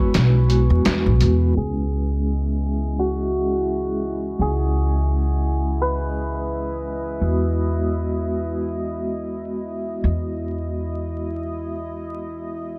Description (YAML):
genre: trip hop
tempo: 85 BPM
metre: 4/4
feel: swing 55% on 16ths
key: C# minor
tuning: A4 = 441 Hz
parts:
  - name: santur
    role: melody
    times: 0.0-8.5 s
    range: F#4 to C#5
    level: -30 LUFS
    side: equal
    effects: tape echo
  - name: vibraphone with soft mallets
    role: accompaniment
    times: 0.0-12.8 s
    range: G#3 to G#4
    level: -30 LUFS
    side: equal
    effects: tremolo, tape echo
  - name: deep dark ambient pad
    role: sustained chords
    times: 0.0-12.8 s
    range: B3 to D#5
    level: -34 LUFS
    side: equal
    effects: chorus, built-in reverb, vintage 12-bit sampler grit
  - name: trip hop sampler-style drum kit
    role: drums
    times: 0.1-1.4 s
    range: hi-hat, snare drum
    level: -24 LUFS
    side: equal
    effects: none
  - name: upright bass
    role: bass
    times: 0.2-12.8 s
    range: B1 to E2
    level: -24 LUFS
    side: equal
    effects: none
room: little or no reverb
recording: vinyl crackle, low-pass filter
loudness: -22 LUFS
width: mono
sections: 0.0-1.6 A section; 1.6-12.8 B section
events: kick drops out 0.1-1.6; filter sweep 1.6-12.8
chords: 0.0 Eadd9; 1.6 C#m; 7.2 Eadd9